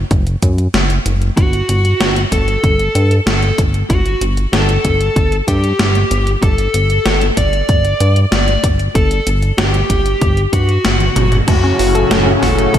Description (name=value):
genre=synthwave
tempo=95 BPM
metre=4/4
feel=straight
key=unclear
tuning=A4 = 439 Hz
part: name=chorused synth bass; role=bass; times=0.0-12.8 s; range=F#1 to G2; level=-15 LUFS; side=equal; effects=none
part: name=electronic kick drum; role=drums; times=0.1-12.8 s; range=none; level=-15 LUFS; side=equal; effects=overdrive
part: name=gated 80s digital drum machine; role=drums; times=0.1-12.8 s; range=crash cymbal, hi-hat, snare drum, toms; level=-19 LUFS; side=equal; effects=gated reverb, gated reverb snare, overdrive
part: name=dark smooth lead guitar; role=melody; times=1.4-12.8 s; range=F#4 to D5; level=-18 LUFS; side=left 1 dB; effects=overdrive, ping-pong delay
part: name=soft supersaw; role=sustained chords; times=11.5-12.8 s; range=A2 to F#4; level=-15 LUFS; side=left 1 dB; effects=sidechain pumping
part: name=analog pluck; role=arpeggios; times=11.5-12.8 s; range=A3 to A4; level=-19 LUFS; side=right 1 dB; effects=chorus, cassette tape, tape echo
room=moderate lush hall reverb, RT60 2.2 s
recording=dreamy mix soaked in reverb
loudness=-11 LUFS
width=side -10 dB against mid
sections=0.0-11.5 A section; 11.5-12.8 B section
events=drum fill 10.8-11.5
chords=0.0 N.C.; 1.4 Gsus2; 11.5 F#m